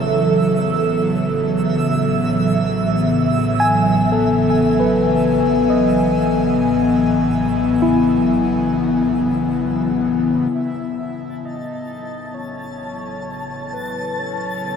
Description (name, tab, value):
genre	ambient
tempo	66 BPM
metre	4/4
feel	straight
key	A lydian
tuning	A4 = 440 Hz
part	airy breathy pad	sustained chords	0.0-14.8 s	C#3 to G#5	-17 LUFS	left 1 dB	chorus
part	bright tine electric piano	arpeggios	0.0-10.5 s	E4 to G#5	-22 LUFS	equal	phaser, tape echo
part	muted studio double bass section	bass	0.0-14.8 s	A1	-29 LUFS	right 1 dB	none
part	twinkling granular texture	texture	0.0-14.8 s	E5 to A5	-28 LUFS	right 4 dB	built-in reverb
part	breathy flute-like synth lead	melody	10.5-14.8 s	B4 to E5	-31 LUFS	equal	analog chorus, tape echo
room	wet cathedral reverb, RT60 6.2 s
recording	in a vast, echoing space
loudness	-15 LUFS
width	side -7 dB against mid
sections	0.0-10.5 A section; 10.5-14.8 B section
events	fade-in on double bass section 0.0-10.5, 10.5-14.8; fade-out on synth texture 0.0-10.5; fade-in on analog synth pad 10.5-14.8; fade-in on soft synth lead 10.5-14.8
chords	0.0 Amaj7; 10.5 A